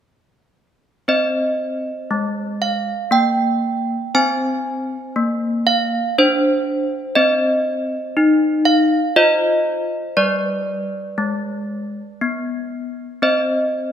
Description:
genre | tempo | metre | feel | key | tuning
classical, tune for handbells | 59 BPM | 3/4 | straight | C minor | A4 = 440 Hz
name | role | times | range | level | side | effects
desk bells | solo | 1.1-13.9 s | G3 to Ab5 | -16 LUFS | equal | none
room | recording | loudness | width
moderate concert hall reverb, RT60 2.1 s | minimal, uncompressed stereo recording | -16 LUFS | side -9 dB against mid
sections
1.1-13.9 A section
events
none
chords
1.1 Cm; 4.1 Bb9; 7.2 Cm; 9.2 F5; 10.2 G; 13.2 Cm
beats
| 1.08 2.10 3.12 | 4.14 5.16 6.16 | 7.16 8.15 9.16 | 10.17 11.20 12.22 | 13.25

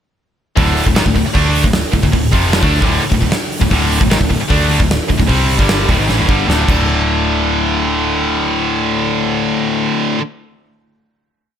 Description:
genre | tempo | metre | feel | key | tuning
hard rock | 152 BPM | 4/4 | straight | D minor | A4 = 442 Hz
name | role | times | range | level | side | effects
distorted electric guitar | riff | 0.6-10.2 s | D2 to D4 | -19 LUFS | left 10 dB | overdrive
heavy high-gain guitar | riff | 0.6-10.2 s | D2 to D4 | -20 LUFS | equal | distortion
tight distorted guitar | riff | 0.6-10.2 s | D2 to D4 | -19 LUFS | right 10 dB | distortion
hollow-body short-scale fingered electric bass | bass | 0.6-10.0 s | D1 to D2 | -18 LUFS | equal | none
gated 80s drum kit | drums | 0.6-6.8 s | crash cymbal, hi-hat, kick drum, snare drum | -16 LUFS | equal | none
room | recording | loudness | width
little or no reverb | none | -12 LUFS | side -9 dB against mid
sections
0.6-6.9 riff; 6.9-10.0 final hit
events
drum fill 6.1-6.9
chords
0.6 Dm; 6.7 D5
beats
| 0.57 0.96 1.35 1.74 | 2.14 2.53 2.92 3.32 | 3.71 4.11 4.51 4.90 | 5.30 5.70 6.09 6.49 | 6.89 7.28 7.68 8.07 | 8.46 8.86 9.25 9.64

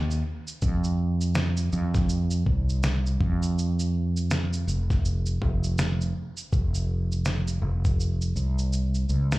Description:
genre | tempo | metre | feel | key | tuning
acoustic pop | 82 BPM | 4/4 | swing 60% on 16ths | unclear | A4 = 439 Hz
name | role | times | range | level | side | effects
fretless electric bass | bass | 0.0-9.4 s | F1 to F2 | -24 LUFS | equal | none
lo-fi sampler-style drum kit | drums | 0.1-9.4 s | kick drum, shaker, snare drum | -28 LUFS | equal | overdrive
room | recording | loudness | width
digital ambience | live gig heard through the venue's PA, club reverb | -23 LUFS | side -18 dB against mid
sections
0.0-9.4 A section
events
drum fill 8.0-9.4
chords
none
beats
| 0.63 1.36 2.10 2.84 | 3.57 4.31 5.05 5.78 | 6.52 7.26 7.99 8.73

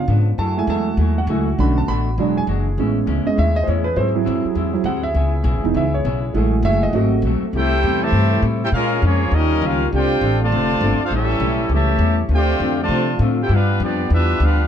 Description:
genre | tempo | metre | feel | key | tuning
jazz, big band swing | 201 BPM | 4/4 | swing 62% on 8ths | C major from 7.5 s | A4 = 444 Hz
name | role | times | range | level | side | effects
warm concert grand piano | accompaniment | 0.0-7.5 s | D3 to B5 | -20 LUFS | right 4 dB | none
mellow trombone section | sustained chords | 0.0-14.7 s | B#2 to G#4 | -31 LUFS | left 1 dB | none
upright bass | bass | 0.0-14.7 s | E1 to C3 | -19 LUFS | equal | none
vintage hollow-body jazz guitar | accompaniment | 0.1-14.6 s | G2 to A4 | -25 LUFS | left 5 dB | none
bright trombone section | second line | 7.5-14.6 s | A2 to G4 | -23 LUFS | right 3 dB | none
warm trumpet section | melody | 7.6-14.7 s | Bb3 to A5 | -21 LUFS | left 1 dB | none
room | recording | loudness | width
light reverb | dark, warm production | -16 LUFS | side -9 dB against mid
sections
0.0-7.5 A section; 7.5-14.7 B section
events
grand piano solo 0.0-7.5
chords
0.4 F#m9; 1.6 Bm7; 2.2 E9; 2.8 Amaj7; 4.0 G#aug7; 5.2 C#m7; 6.3 F#m9; 6.9 G#7b9; 7.5 C6; 8.7 Bbm7; 9.3 Eb9; 9.9 F6; 11.1 A7; 12.3 Dm7; 13.5 G7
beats
0.09 | 0.39 0.69 0.99 1.28 | 1.58 1.88 2.18 2.48 | 2.77 3.07 3.37 3.67 | 3.96 4.26 4.56 4.86 | 5.16 5.45 5.75 6.05 | 6.35 6.64 6.94 7.24 | 7.54 7.83 8.13 8.43 | 8.73 9.03 9.32 9.62 | 9.92 10.22 10.52 10.81 | 11.11 11.41 11.71 12.01 | 12.31 12.61 12.90 13.20 | 13.50 13.80 14.10 14.40

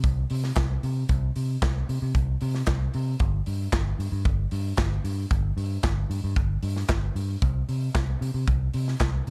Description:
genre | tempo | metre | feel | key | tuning
disco | 114 BPM | 4/4 | straight | unclear | A4 = 440 Hz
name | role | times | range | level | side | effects
fingered electric bass | bass | 0.0-9.3 s | G1 to C3 | -28 LUFS | equal | none
modern studio drum kit | drums | 0.0-9.3 s | handclaps, hi-hat, kick drum, snare drum | -30 LUFS | equal | none
room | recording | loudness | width
little or no reverb | dark, warm production | -26 LUFS | mono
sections
0.0-9.3 A section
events
none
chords
none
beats
0.04 0.56 | 1.09 1.62 2.15 2.68 | 3.20 3.73 4.26 4.79 | 5.31 5.84 6.37 6.89 | 7.42 7.95 8.47 9.00

